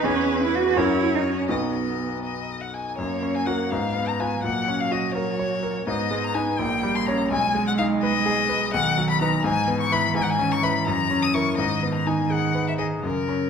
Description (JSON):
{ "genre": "quick classical-period movement for piano trio", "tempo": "83 BPM (dotted quarters)", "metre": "6/8", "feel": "straight", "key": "unclear", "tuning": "A4 = 440 Hz", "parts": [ { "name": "rich violin", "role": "melody", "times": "0.0-13.5 s", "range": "A#4 to D#6", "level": "-26 LUFS", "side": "left 6 dB", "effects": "none" }, { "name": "rich cello", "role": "second line", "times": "0.0-13.5 s", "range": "C#3 to F#4", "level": "-26 LUFS", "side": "right 8 dB", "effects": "none" }, { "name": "bright grand piano", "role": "accompaniment", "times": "0.0-13.5 s", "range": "Bb1 to C#5", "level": "-25 LUFS", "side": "left 2 dB", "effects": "none" } ], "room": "wet recital hall reverb, RT60 1.4 s", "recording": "none", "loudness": "-21 LUFS", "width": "side -7 dB against mid", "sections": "0.0-3.0 A section; 3.0-13.5 B section", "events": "none", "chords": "0.1 C#m7/E; 0.8 F#7; 1.5 B; 3.0 F#; 3.7 Fdim/Ab; 4.4 F#/A#; 5.9 G#m; 6.6 Gdim/Bb; 7.3 G#m/B; 8.7 B; 9.4 E/G#; 10.2 C#m7/G#; 10.9 F#7; 11.6 G#m", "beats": "| 0.05 0.77 | 1.50 2.24 | 2.98 3.71 | 4.43 5.15 | 5.87 6.59 | 7.30 8.02 | 8.73 9.45 | 10.15 10.87 | 11.59 12.31 | 13.04" }